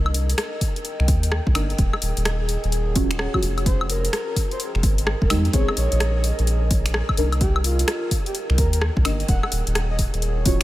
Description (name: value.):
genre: UK garage, two-step garage.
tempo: 128 BPM.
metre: 4/4.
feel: swing 64% on 16ths.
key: unclear.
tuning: A4 = 439 Hz.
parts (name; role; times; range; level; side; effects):
soft dub sub bass; bass; 0.0-10.6 s; Eb1 to F2; -22 LUFS; equal; tube saturation.
warbly tape-like pad; texture; 0.0-10.6 s; Ab4 to Ab5; -33 LUFS; left 1 dB; chorus, built-in reverb, sidechain pumping.
house drum kit; drums; 0.1-10.6 s; finger snaps, hi-hat, rim click, woodblock; -26 LUFS; left 1 dB; overdrive, studio reverb.
electronic kick drum; drums; 0.6-10.6 s; none; -22 LUFS; equal; overdrive, studio reverb.
deep mellow chord stab; stabs; 1.6-10.6 s; Ab3 to Bb4; -30 LUFS; equal; chorus, phaser, analog delay.
breathy flute-like synth lead; melody; 3.7-10.6 s; F4 to Gb5; -30 LUFS; right 1 dB; chorus, analog delay.
room: light reverb.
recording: none.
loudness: -19 LUFS.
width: side -16 dB against mid.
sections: 0.0-10.6 A section.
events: none.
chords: 0.0 Cm9; 1.8 Ebm9; 3.7 Fm9; 5.5 Bbm9; 7.2 Cm9; 9.3 Ebm9.